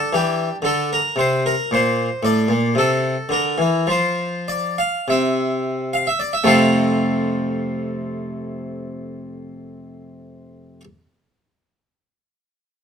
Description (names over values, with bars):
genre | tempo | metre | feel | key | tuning
classical, baroque-style suite movement for harpsichord | 43-61 BPM | 3/4 | rubato | F major | A4 = 440 Hz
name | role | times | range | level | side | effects
harpsichord | solo | 0.0-10.8 s | F2 to F5 | -18 LUFS | equal | none
room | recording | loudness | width
light reverb | close, detailed microphones | -17 LUFS | side -7 dB against mid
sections
0.0-6.4 A section; 6.4-10.5 B section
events
slowing down 0.0-6.4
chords
0.0 C13; 1.6 Bbmaj9; 2.7 F5/C; 5.1 N.C.; 6.4 F